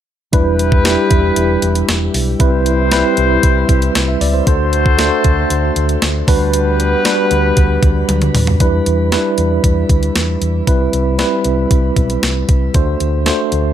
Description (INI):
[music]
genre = 1980s-style pop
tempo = 116 BPM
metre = 4/4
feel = straight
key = E minor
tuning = A4 = 440 Hz
[part]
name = tine electric piano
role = accompaniment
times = 0.3-13.7 s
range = G3 to E5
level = -16 LUFS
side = right 1 dB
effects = medium stereo tremolo, shimmer reverb
[part]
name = warm horn section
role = stabs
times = 0.3-8.3 s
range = B3 to C5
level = -20 LUFS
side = left 4 dB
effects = shimmer reverb
[part]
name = hollow-body short-scale fingered electric bass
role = bass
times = 0.3-13.7 s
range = E1 to E2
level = -17 LUFS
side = equal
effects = none
[part]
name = clean 12-bit digital drum machine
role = drums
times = 0.3-13.6 s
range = hi-hat, kick drum, snare drum, toms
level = -15 LUFS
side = equal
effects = overdrive
[sound]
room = light reverb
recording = none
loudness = -12 LUFS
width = side -10 dB against mid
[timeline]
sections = 0.3-8.6 A section; 8.6-13.7 B section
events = drum fill 8.1-8.6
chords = 0.3 Em7; 2.4 Cmaj7; 4.5 D7; 6.3 Gmaj7/D; 8.6 Em7; 10.7 Cmaj7; 12.7 D7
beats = | 0.33 0.85 1.37 1.88 | 2.40 2.92 3.44 3.95 | 4.47 4.99 5.50 6.02 | 6.54 7.06 7.57 8.09 | 8.61 9.12 9.64 10.16 | 10.68 11.19 11.71 12.23 | 12.74 13.26